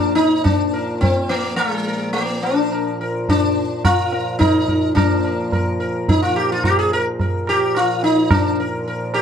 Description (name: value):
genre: indian classical, Hindustani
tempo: 107 BPM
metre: 3/4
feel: straight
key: Bb raga khamaj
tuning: A4 = 440 Hz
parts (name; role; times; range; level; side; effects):
- sitar; melody; 0.0-9.2 s; Ab3 to Bb4; -18 LUFS; left 1 dB; none
- hand-pumped harmonium; drone; 0.0-9.2 s; Bb2 to F3; -25 LUFS; equal; none
- tabla; percussion; 0.5-9.2 s; none; -21 LUFS; right 1 dB; none
room: moderate small room reverb, RT60 0.6 s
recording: dark, warm production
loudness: -16 LUFS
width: side -8 dB against mid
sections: 0.0-9.2 A section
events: none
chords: none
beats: 0.45 1.02 | 1.59 2.15 2.71 | 3.28 3.84 4.40 | 4.96 5.52 6.08 | 6.64 7.20 7.75 | 8.31 8.86